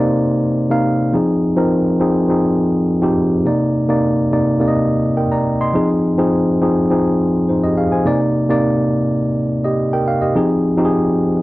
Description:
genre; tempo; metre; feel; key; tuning
disco; 104 BPM; 4/4; straight; C minor; A4 = 438 Hz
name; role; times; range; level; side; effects
tine electric piano; solo; 0.0-11.4 s; C3 to C6; -14 LUFS; equal; none
room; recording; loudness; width
light reverb; dry, close 1970s-style studio recording; -14 LUFS; side -18 dB against mid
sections
0.0-8.1 A section; 8.1-11.4 B section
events
none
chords
0.0 Cm9; 1.1 Fm7; 3.4 Cm9; 5.8 Fm7; 8.1 Cm9; 10.3 Fm7

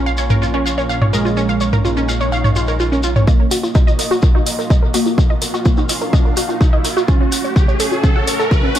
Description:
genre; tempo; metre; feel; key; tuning
melodic techno; 126 BPM; 4/4; straight; Eb minor; A4 = 440 Hz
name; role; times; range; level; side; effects
resonant sweep polysynth; melody; 0.0-8.8 s; Ab3 to Db4; -24 LUFS; right 2 dB; chorus, sidechain pumping, tape echo
lush unison pad; sustained chords; 0.0-8.8 s; A3 to F5; -25 LUFS; equal; chorus, phaser, sidechain pumping
wide unison pluck; arpeggios; 0.0-8.8 s; Db4 to Gb5; -20 LUFS; right 1 dB; sidechain pumping, dub echo
fat analog bass; bass; 0.0-3.3 s; Bb1; -20 LUFS; equal; tube saturation, sidechain pumping
shekere; percussion; 0.1-8.8 s; none; -27 LUFS; left 3 dB; dub echo
house drum kit; drums; 0.3-8.8 s; hi-hat, toms; -21 LUFS; equal; overdrive, sidechain pumping on toms, low-pass filter on toms, sidechain pumping on hats, low-pass filter on hats, low-pass filter on room
electronic kick drum; drums; 3.3-8.6 s; none; -13 LUFS; equal; overdrive
riser; sound effects; 4.7-8.8 s; none; -24 LUFS; equal; none
room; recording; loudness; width
light reverb; echo-heavy mix; -13 LUFS; side -11 dB against mid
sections
0.0-3.3 A section; 3.3-8.8 B section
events
filter sweep on synth arpeggio sound 0.0-3.3; build-up 3.3-8.8; drum fill 3.3-8.8; filter sweep on analog polysynth 3.3-8.8; riser 4.7-8.8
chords
0.0 Bbm; 3.3 Ebmadd9; 7.1 Gbm

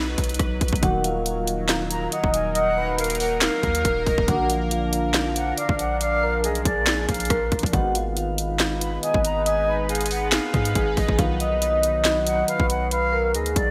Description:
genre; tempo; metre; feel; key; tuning
hip hop, trap; 139 BPM; 4/4; half-time; Eb harmonic minor; A4 = 440 Hz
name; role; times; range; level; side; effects
sweeping resonant pad; sustained chords; 0.0-13.7 s; F3 to B4; -35 LUFS; equal; chorus
long sustained 808-style bass; bass; 0.0-13.7 s; Eb1 to Ab2; -30 LUFS; equal; none
trap drum kit; drums; 0.2-13.7 s; handclaps, hi-hat, kick drum, rim click, snare drum; -26 LUFS; equal; overdrive
vibraphone with soft mallets; melody; 0.8-13.7 s; F4 to Eb6; -26 LUFS; equal; low-pass filter
concert harp; accompaniment; 0.8-13.7 s; D3 to Eb4; -34 LUFS; equal; low-pass filter
concert flute; second line; 1.9-13.7 s; D5 to Cb6; -31 LUFS; equal; delay
room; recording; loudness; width
moderate lush hall reverb, RT60 1.9 s, small room ambience; bright 1980s-style digital production; -22 LUFS; mono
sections
0.8-13.7 A section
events
none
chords
0.0 B; 0.8 Ebm; 4.3 Bb; 7.7 Abm; 11.2 B

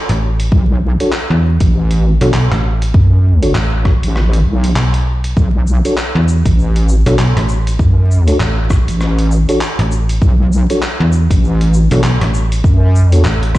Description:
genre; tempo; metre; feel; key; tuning
glitch hop; 99 BPM; 4/4; swing 59% on 16ths; B minor; A4 = 441 Hz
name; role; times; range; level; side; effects
slap-like FM bass; bass; 0.1-13.6 s; A1 to E2; -13 LUFS; equal; none
boom bap sampler-style drum kit; drums; 0.1-13.6 s; handclaps, hi-hat, rim click; -22 LUFS; equal; none
wobble bass; bass; 0.5-13.2 s; A1 to F#2; -11 LUFS; equal; chorus, tube saturation
electronic kick drum; drums; 0.5-13.6 s; none; -12 LUFS; equal; none
mellow tonewheel organ; stabs; 1.0-13.2 s; D4 to C#5; -20 LUFS; equal; fast rotary speaker, vintage 12-bit sampler grit, sidechain pumping, ping-pong delay
egg shaker; percussion; 5.4-13.6 s; none; -34 LUFS; left 2 dB; none
room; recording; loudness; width
digital ambience; played on a big sound system in a bare room, large studio reverb, vinyl crackle, nothing above 10.3 kHz; -10 LUFS; side -16 dB against mid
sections
0.0-13.6 A section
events
none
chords
0.0 B7(no3)

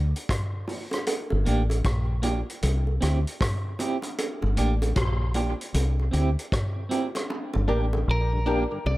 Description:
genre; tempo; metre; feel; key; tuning
dub reggae; 77 BPM; 4/4; swing 63% on 16ths; G dorian; A4 = 442 Hz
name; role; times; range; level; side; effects
deep dub fingered electric bass; bass; 0.0-9.0 s; G1 to D2; -24 LUFS; equal; none
vintage drum kit; drums; 0.2-7.3 s; hi-hat, kick drum, rim click; -29 LUFS; equal; none
bongos; percussion; 0.7-9.0 s; none; -33 LUFS; right 2 dB; dub echo
clean electric guitar; accompaniment; 1.5-8.6 s; Bb3 to G4; -31 LUFS; right 2 dB; tremolo, dub echo
tonewheel organ; accompaniment; 7.5-8.8 s; G2 to G4; -36 LUFS; left 2 dB; slow rotary speaker, dub echo
filtered dub chord stab; stabs; 7.7-8.8 s; D4 to Bb4; -30 LUFS; left 2 dB; phaser, dub echo
clean electric guitar; melody; 8.1-9.0 s; Bb4 to D5; -31 LUFS; equal; dub echo
room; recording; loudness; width
light reverb, studio reverb; none; -23 LUFS; side -18 dB against mid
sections
0.0-9.0 A section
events
break 0.0-7.3; part muted 7.3-9.0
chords
0.0 N.C.; 1.1 Gm; 2.6 C; 4.2 Gm; 5.7 C; 7.3 Gm

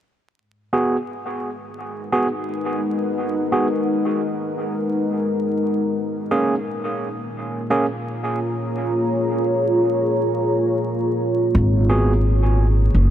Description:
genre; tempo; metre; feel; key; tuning
ambient; 86 BPM; 4/4; straight; G# dorian; A4 = 440 Hz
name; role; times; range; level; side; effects
deep dark ambient pad; sustained chords; 2.0-13.1 s; G#3 to A#5; -21 LUFS; equal; chorus, built-in reverb
overdriven tine electric piano; stabs; 0.7-12.1 s; A#3 to G#4; -24 LUFS; right 2 dB; low-pass filter, dub echo
upright bass; bass; 11.5-13.1 s; F#1 to G#1; -15 LUFS; equal; none
room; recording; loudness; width
moderate huge ambient reverb, RT60 6.5 s; vinyl crackle; -18 LUFS; side -11 dB against mid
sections
0.4-13.1 A section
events
none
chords
0.4 G#m7; 6.0 A#m7; 11.5 G#m7

